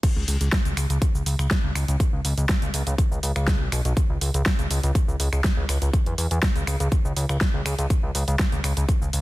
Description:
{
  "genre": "progressive house",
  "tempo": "122 BPM",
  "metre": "4/4",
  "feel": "straight",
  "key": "C# minor",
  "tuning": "A4 = 440 Hz",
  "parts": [
    { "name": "big-room dance drum kit", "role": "drums", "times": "0.0-9.2 s", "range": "cabasa, crash cymbal, finger snaps, hi-hat, snare drum", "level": "-28 LUFS", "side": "equal", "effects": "overdrive, sidechain pumping on hats, high-pass filter on hats, sidechain pumping on perc, high-pass filter on perc, sidechain pumping on cymbals, high-pass filter on cymbals, high-pass filter on snare" },
    { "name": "electronic kick drum", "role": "drums", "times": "0.0-9.0 s", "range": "none", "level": "-22 LUFS", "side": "equal", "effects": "none" },
    { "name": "fat analog bass", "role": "bass", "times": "0.2-9.2 s", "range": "B1 to E2", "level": "-23 LUFS", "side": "equal", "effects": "sidechain pumping" }
  ],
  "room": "little or no reverb",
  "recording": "dense, heavily limited modern master, high-pass filter",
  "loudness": "-20 LUFS",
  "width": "side -18 dB against mid",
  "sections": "0.0-9.2 A section",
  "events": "drop 0.0-9.2",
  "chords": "none"
}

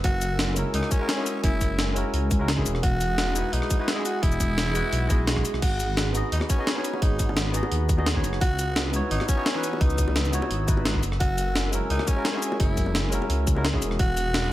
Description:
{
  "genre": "liquid drum and bass",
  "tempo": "172 BPM",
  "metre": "4/4",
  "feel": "straight",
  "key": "unclear",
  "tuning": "A4 = 438 Hz",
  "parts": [
    { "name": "growling tenor saxophone", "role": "melody", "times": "0.0-14.5 s", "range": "C#4 to F#4", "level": "-30 LUFS", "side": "equal", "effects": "ping-pong delay" },
    { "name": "airy breathy pad", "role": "sustained chords", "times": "0.0-14.5 s", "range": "G#4 to E6", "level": "-36 LUFS", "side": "right 1 dB", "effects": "chorus" },
    { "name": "dark detuned saw bass", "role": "bass", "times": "0.0-14.5 s", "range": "E1 to D#2", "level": "-26 LUFS", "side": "equal", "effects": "none" },
    { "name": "breakbeat sampler-style drum kit", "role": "drums", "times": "0.0-14.4 s", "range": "crash cymbal, hi-hat, rim click, shaker, snare drum", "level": "-28 LUFS", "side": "equal", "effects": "none" },
    { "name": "electronic kick drum", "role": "drums", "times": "0.0-14.1 s", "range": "none", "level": "-24 LUFS", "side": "equal", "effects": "none" },
    { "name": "barky tine electric piano", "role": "accompaniment", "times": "0.5-14.5 s", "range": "E3 to D#5", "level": "-31 LUFS", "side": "left 1 dB", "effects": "ping-pong delay" },
    { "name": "bongos", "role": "percussion", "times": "6.4-13.6 s", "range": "none", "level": "-36 LUFS", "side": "left 2 dB", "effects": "none" }
  ],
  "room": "little or no reverb",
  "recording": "none",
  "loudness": "-22 LUFS",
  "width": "side -15 dB against mid",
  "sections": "0.0-14.5 A section",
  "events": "none",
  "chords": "0.0 F#9; 2.8 Emaj9; 5.6 G#m7; 8.4 C#m11; 11.0 F#9; 14.0 Emaj9"
}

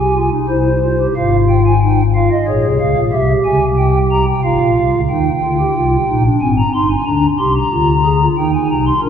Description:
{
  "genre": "classical, baroque-style 3-part fugue for pipe organ",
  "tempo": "92 BPM",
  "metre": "3/4",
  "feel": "straight",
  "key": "F minor, Eb major from 5.1 s",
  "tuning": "A4 = 438 Hz",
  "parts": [
    { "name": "pipe organ, stopped flute", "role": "solo", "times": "0.0-9.1 s", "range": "G1 to C6", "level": "-12 LUFS", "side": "equal", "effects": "none" }
  ],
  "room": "wet church reverb, RT60 2.6 s",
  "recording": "none",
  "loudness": "-12 LUFS",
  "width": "side -8 dB against mid",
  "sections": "0.0-1.2 A section; 1.2-5.1 B section; 5.1-9.1 C section",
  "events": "none",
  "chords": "0.5 C; 1.2 Fm/Ab; 2.5 Bbm; 3.1 C; 4.4 Fm/Ab; 5.1 Eb; 6.4 Ab; 7.1 Bb; 8.4 Eb"
}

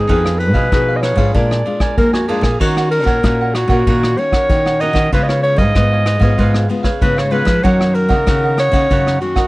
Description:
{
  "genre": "samba and choro",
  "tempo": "95 BPM",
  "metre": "4/4",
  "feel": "straight",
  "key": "Eb minor",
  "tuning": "A4 = 440 Hz",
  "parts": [
    { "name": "warm clarinet", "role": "melody", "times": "0.0-9.5 s", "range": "Gb4 to Eb5", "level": "-17 LUFS", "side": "equal", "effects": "none" },
    { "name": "cavaquinho", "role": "accompaniment", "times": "0.0-9.5 s", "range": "D4 to Ab5", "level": "-23 LUFS", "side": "right 5 dB", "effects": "none" },
    { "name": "nylon-string guitar", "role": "accompaniment", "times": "0.0-9.5 s", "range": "F2 to Ab4", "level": "-23 LUFS", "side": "left 3 dB", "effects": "none" },
    { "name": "nylon-string guitar", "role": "bass", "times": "0.0-9.2 s", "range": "F2 to Bb3", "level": "-16 LUFS", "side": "equal", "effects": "none" },
    { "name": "vintage brush drum kit", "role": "drums", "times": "0.1-9.5 s", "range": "crash cymbal, kick drum, ride cymbal, rim click", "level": "-18 LUFS", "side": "equal", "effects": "none" }
  ],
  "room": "little or no reverb",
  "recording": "dry, close 1970s-style studio recording",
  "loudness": "-12 LUFS",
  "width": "side -20 dB against mid",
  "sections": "0.0-2.6 A section; 2.6-9.5 A section",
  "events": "none",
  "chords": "0.1 Fm7b5; 1.3 Bb7; 2.6 Ebm7; 5.1 Db7; 7.6 Gb6"
}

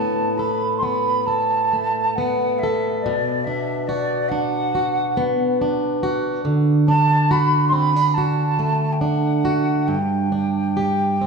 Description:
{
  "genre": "celtic folk, Celtic slow air",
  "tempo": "66-72 BPM",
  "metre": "4/4",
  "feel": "rubato",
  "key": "unclear",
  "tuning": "A4 = 442 Hz",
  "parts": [
    { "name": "breathy mellow wooden flute", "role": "melody", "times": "0.0-11.3 s", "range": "D5 to C6", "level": "-21 LUFS", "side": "right 1 dB", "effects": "none" },
    { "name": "fingerpicked plugged-in swing-style acoustic guitar", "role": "accompaniment", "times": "0.0-11.3 s", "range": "G2 to A4", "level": "-20 LUFS", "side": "right 1 dB", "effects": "none" }
  ],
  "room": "moderate concert hall reverb, RT60 2.2 s",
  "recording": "studio reverb",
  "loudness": "-18 LUFS",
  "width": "side -4 dB against mid",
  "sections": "0.0-11.3 A section",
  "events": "none",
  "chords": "0.0 Asus2; 3.0 Bm; 6.5 D; 9.9 G5"
}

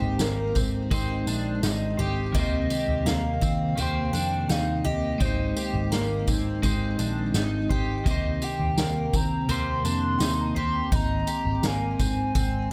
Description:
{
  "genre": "dream pop",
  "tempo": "84 BPM",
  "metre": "4/4",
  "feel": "straight",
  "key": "unclear",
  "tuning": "A4 = 440 Hz",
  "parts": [
    { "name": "warbly nostalgic lead", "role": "melody", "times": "0.0-12.7 s", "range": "C5 to C6", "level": "-34 LUFS", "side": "equal", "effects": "chorus, delay" },
    { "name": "clean electric guitar", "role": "accompaniment", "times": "0.0-11.4 s", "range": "C3 to C5", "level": "-34 LUFS", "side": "equal", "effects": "harmonic tremolo, subtle chorus" },
    { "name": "warbly tape-like pad", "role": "sustained chords", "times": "0.0-12.7 s", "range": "Eb3 to C4", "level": "-36 LUFS", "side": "equal", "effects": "chorus, built-in reverb, phaser" },
    { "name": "picked twelve-string acoustic guitar", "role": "arpeggios", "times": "0.0-12.7 s", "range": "Bb3 to G4", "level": "-35 LUFS", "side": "equal", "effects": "subtle chorus, delay" },
    { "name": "vintage muted picked electric bass", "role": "bass", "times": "0.0-12.7 s", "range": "Ab1 to Eb3", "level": "-32 LUFS", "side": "equal", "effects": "none" },
    { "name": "soft-mallet drum kit", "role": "drums", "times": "0.0-12.5 s", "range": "kick drum, snare drum, tambourine, toms", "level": "-31 LUFS", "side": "equal", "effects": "none" },
    { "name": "synth chime", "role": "texture", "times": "2.4-11.4 s", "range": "Eb4 to Bb5", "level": "-44 LUFS", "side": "equal", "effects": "none" }
  ],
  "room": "light reverb",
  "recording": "none",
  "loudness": "-26 LUFS",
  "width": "mono",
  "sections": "0.0-12.7 A section",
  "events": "none",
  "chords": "0.0 Abmaj7; 2.3 Eb6; 5.2 Abmaj7; 8.1 Eb6; 10.9 Abmaj7"
}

